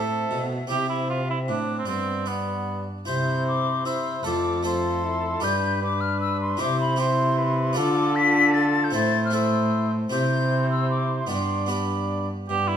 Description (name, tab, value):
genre	classical, renaissance-style consort dance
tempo	153 BPM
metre	3/4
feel	straight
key	unclear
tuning	A4 = 440 Hz
part	mellow hollow silver concert flute	melody	0.0-12.8 s	D5 to B6	-27 LUFS	left 4 dB	none
part	warm cor anglais	second line	0.0-12.8 s	B3 to D5	-29 LUFS	right 4 dB	none
part	bright trombone	accompaniment	0.0-12.8 s	B3 to F4	-31 LUFS	left 3 dB	none
part	harpsichord	accompaniment	0.0-12.8 s	F2 to C5	-29 LUFS	left 1 dB	none
part	dark cello	bass	0.0-12.8 s	F2 to D3	-27 LUFS	right 1 dB	none
room	wet stone room reverb, RT60 1.1 s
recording	none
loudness	-21 LUFS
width	side -8 dB against mid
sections	0.0-3.1 A section; 3.1-12.5 A section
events	none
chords	0.0 Am; 0.7 C; 1.9 G; 3.1 C; 4.3 F; 5.4 G; 6.6 C; 7.8 Dm; 8.9 Am; 10.1 C; 11.3 G